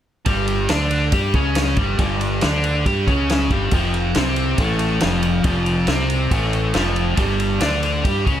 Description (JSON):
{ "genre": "blues rock power trio and southern rock", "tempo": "139 BPM", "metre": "4/4", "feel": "straight", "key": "unclear", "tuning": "A4 = 440 Hz", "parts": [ { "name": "biting overdriven guitar", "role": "riff", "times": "0.3-8.4 s", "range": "F2 to G4", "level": "-20 LUFS", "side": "left 1 dB", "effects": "none" }, { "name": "growling fingered electric bass", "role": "bass", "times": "0.3-8.4 s", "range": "F1 to G2", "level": "-22 LUFS", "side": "equal", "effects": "overdrive" }, { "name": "vintage drum kit", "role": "drums", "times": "0.3-8.4 s", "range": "kick drum, ride cymbal, snare drum", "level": "-22 LUFS", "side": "equal", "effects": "none" } ], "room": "light reverb", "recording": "none", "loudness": "-17 LUFS", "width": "side -10 dB against mid", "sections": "0.3-8.4 A section", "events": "none", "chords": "0.3 G5; 3.7 F5; 7.2 G5" }